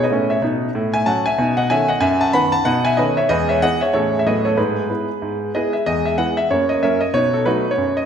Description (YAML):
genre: jazz, stride piano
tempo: 187 BPM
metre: 4/4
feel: swing 60% on 8ths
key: E major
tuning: A4 = 440 Hz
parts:
  - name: clear concert grand piano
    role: solo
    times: 0.0-8.1 s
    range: E2 to B5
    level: -16 LUFS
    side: equal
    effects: none
room: wet recital hall reverb, RT60 1.4 s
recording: recorded in a church or concert hall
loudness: -16 LUFS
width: side -8 dB against mid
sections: 0.0-5.9 A section; 5.9-8.1 A section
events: none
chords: 0.0 G#madd11 (rootless); 0.7 F#m/A; 1.4 B9; 2.0 B/F#; 2.7 B9; 3.3 E; 3.9 Amaj7; 4.3 B7/A; 4.6 E/G#; 5.9 E; 6.5 F#; 7.1 B7